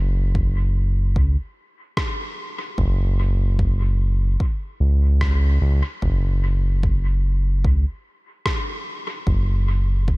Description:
ambient dub; 74 BPM; 4/4; swing 58% on 16ths; A4 = 443 Hz
round analog bass; bass; 0.0-10.2 s; F#1 to C#2; -18 LUFS; equal
electronic kick drum; drums; 0.3-10.2 s; -23 LUFS; equal
electronic rim click; drums; 2.0-8.6 s; -31 LUFS; equal; dub echo
little or no reverb; -18 LUFS; side -23 dB against mid
0.0-10.2 A section

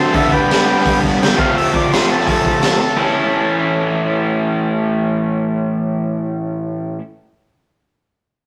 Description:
garage rock duo or trio; 170 BPM; 4/4; straight; A mixolydian; A4 = 439 Hz
combo organ; melody; 0.0-3.0 s; B3 to G5; -20 LUFS; equal
raw garage guitar; riff; 0.0-7.0 s; F2 to A4; -19 LUFS; equal; overdrive
raw garage drum kit; drums; 0.1-2.7 s; hi-hat, kick drum, snare drum; -20 LUFS; equal
moderate stone room reverb, RT60 1.0 s; rough rehearsal-room recording, tube saturation; -16 LUFS; mono
0.0-3.0 A section; 3.0-5.8 B section
transistor combo organ solo 0.0-3.0
0.2 G; 1.4 F; 3.0 A

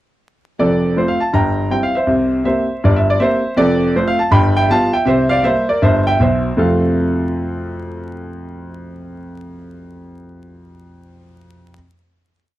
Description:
jazz, stride piano; 161 BPM; 4/4; swing 62% on 8ths; F major; A4 = 440 Hz
clear grand piano; solo; 0.6-11.8 s; F1 to B5; -14 LUFS; equal
light reverb; dry, close 1970s-style studio recording, vinyl crackle; -13 LUFS; side -14 dB against mid
0.6-6.6 A section; 6.6-9.5 final chord
0.6 F; 1.3 C7/G; 2.1 C7; 3.6 F; 4.3 G7; 5.1 C7; 6.6 F

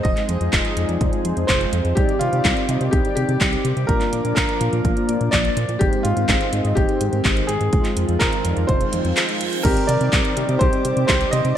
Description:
italo disco; 125 BPM; 4/4; straight; C minor; A4 = 440 Hz
bright baby grand piano; melody; 0.0-11.6 s; F4 to Eb5; -24 LUFS; equal; ping-pong delay
lush unison pad; sustained chords; 0.0-11.6 s; Eb3 to D6; -28 LUFS; right 1 dB; chorus
mellow synth brass; stabs; 0.0-11.5 s; Ab3 to F5; -26 LUFS; left 2 dB; chorus
chorused synth bass; bass; 0.0-11.5 s; F1 to C3; -23 LUFS; equal
electronic kick drum; drums; 0.0-11.2 s; -21 LUFS; equal
house drum kit; drums; 0.0-11.5 s; crash cymbal, handclaps, hi-hat; -24 LUFS; equal; gated reverb
reverse cymbal; sound effects; 8.9-9.6 s; -31 LUFS; right 4 dB
moderate lush hall reverb, RT60 1.6 s; bright 1980s-style digital production; -17 LUFS; side -10 dB against mid
0.0-9.6 A section; 9.6-11.6 B section
reverse cymbal 8.9-9.6
0.0 Fm7; 2.0 Cmadd9; 3.9 Bb; 5.8 Ab; 7.7 Fm7; 9.6 Cmadd9

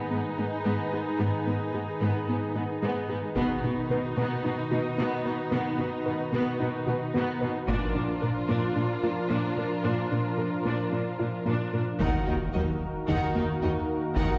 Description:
cinematic, hybrid orchestral and electronic film score; 111 BPM; 4/4; straight; Eb harmonic minor; A4 = 441 Hz
rich symphonic viola section; accompaniment; 0.0-14.4 s; Eb3 to F4; -35 LUFS; equal
warm analog pad; sustained chords; 0.0-14.4 s; Eb3 to Cb5; -34 LUFS; equal; chorus
soft round pluck; arpeggios; 0.1-14.3 s; Eb3 to B4; -37 LUFS; equal
rich symphonic cello section; bass; 0.1-14.2 s; Eb2 to B2; -34 LUFS; equal
taiko ensemble; drums; 3.4-4.4, 7.7-8.7, 12.0-14.4 s; -37 LUFS; equal
warm studio violin section; second line; 12.0-14.4 s; Eb4 to Gb5; -38 LUFS; equal
mellow French horn section; sustained chords; 12.0-14.4 s; Bb3 to Gb4; -38 LUFS; equal
rich symphonic double bass section; bass; 12.0-14.2 s; Eb2; -36 LUFS; equal
impact; sound effects; 12.0-14.2 s; -41 LUFS; equal
wet scoring stage reverb, RT60 1.8 s; heard from further back in the room, nothing above 7.7 kHz; -28 LUFS; mono
0.0-12.0 A section; 12.0-14.4 B section
build-up 0.0-12.0; impact 12.0-14.2
0.0 Abm; 3.4 B; 7.7 Bb; 12.0 Ebm

